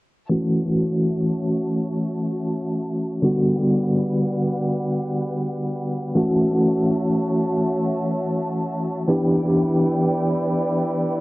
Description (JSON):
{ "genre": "trip hop", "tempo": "free time", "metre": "none", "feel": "none", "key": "F# phrygian", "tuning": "A4 = 440 Hz", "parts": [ { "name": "bell-like tine electric piano", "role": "accompaniment", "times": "0.3-11.2 s", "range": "D3 to G4", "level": "-20 LUFS", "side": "equal", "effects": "fast stereo tremolo, low-pass filter, cassette tape, tape echo" }, { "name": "warm studio violin section", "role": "sustained chords", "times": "0.3-11.2 s", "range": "G3 to A5", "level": "-28 LUFS", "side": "equal", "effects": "cassette tape" } ], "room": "moderate spring reverb, RT60 1.2 s, small room reverb", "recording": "home recording on cassette, vinyl crackle, low-pass filter", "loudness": "-19 LUFS", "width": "side -20 dB against mid", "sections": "0.3-11.2 A section", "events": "filter sweep on tine electric piano 0.3-11.2; filter sweep 0.3-11.2", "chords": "0.3 F#m7; 3.2 Gmaj7; 6.2 F#m7; 9.1 Em7", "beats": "free time" }